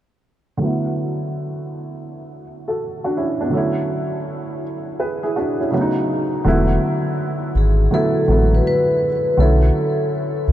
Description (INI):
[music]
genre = hip hop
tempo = 82 BPM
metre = 4/4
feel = swing 66% on 16ths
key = unclear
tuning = A4 = 440 Hz
[part]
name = dark upright piano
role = accompaniment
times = 0.6-10.5 s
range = C#3 to B4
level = -20 LUFS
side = right 1 dB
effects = cassette tape, low-pass filter
[part]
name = sub bass with octave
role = bass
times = 6.5-10.5 s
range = E1 to C#2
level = -15 LUFS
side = equal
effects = none
[part]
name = vibraphone with soft mallets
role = melody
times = 7.6-10.1 s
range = G#4 to B4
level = -20 LUFS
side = left 1 dB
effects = ping-pong delay
[sound]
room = moderate huge ambient reverb, RT60 7.8 s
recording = dreamy mix soaked in reverb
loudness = -17 LUFS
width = side -12 dB against mid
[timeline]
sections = 0.6-6.5 A section; 6.5-10.5 B section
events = filter sweep on upright piano 0.6-6.5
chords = 0.6 E7sus4; 3.5 Dmaj9#11; 5.7 B9; 6.5 E7sus4; 9.4 Bm11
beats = | 0.60 1.33 2.06 2.79 | 3.52 4.26 4.99 5.72 | 6.45 7.18 7.92 8.65 | 9.38 10.11